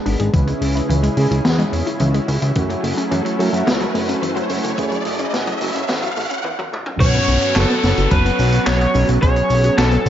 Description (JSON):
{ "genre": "synthwave", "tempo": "108 BPM", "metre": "4/4", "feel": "straight", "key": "F# minor", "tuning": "A4 = 440 Hz", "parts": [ { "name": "soft supersaw", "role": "sustained chords", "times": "0.0-10.1 s", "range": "C#3 to G#4", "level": "-26 LUFS", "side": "equal", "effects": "vintage 12-bit sampler grit, sidechain pumping" }, { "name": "wide unison pluck", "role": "arpeggios", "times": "0.0-10.1 s", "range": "E3 to G#4", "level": "-26 LUFS", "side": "left 2 dB", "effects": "digital delay" }, { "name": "analog synth brass", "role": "stabs", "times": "0.0-10.1 s", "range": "F#3 to B4", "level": "-24 LUFS", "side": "right 2 dB", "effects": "chorus, digital delay" }, { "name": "riser and downlifter", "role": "sound effects", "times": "1.4-10.1 s", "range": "none", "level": "-27 LUFS", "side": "equal", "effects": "none" }, { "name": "fat analog bass", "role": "bass", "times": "0.1-10.1 s", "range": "F#1 to F#2", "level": "-19 LUFS", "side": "equal", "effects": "none" }, { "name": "raw garage drum kit", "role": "drums", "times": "0.1-10.1 s", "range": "cabasa, crash cymbal, handclaps, hi-hat, snare drum, toms", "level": "-24 LUFS", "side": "equal", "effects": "gated reverb" }, { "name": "electronic kick drum", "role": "drums", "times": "0.3-9.3 s", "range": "none", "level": "-17 LUFS", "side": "equal", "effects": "none" }, { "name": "lead guitar through a small cranked amp", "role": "melody", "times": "7.0-10.1 s", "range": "A4 to C#5", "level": "-20 LUFS", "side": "equal", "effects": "overdrive, tape echo" }, { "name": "FM electric piano with soft pad layer", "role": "second line", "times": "7.0-10.1 s", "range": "A5 to C#6", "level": "-28 LUFS", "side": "right 2 dB", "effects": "chorus, vintage 12-bit sampler grit" } ], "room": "light reverb, studio ambience", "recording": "high-pass filter, nothing above 7.6 kHz", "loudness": "-15 LUFS", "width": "side -10 dB against mid", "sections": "0.0-7.0 A section; 7.0-10.1 B section", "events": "filter sweep on analog polysynth 0.0-7.0; filter sweep 0.0-7.0; riser 1.4-6.4; drum fill 6.4-7.0", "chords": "0.3 C#m; 2.6 F#m7; 7.0 Bsus2" }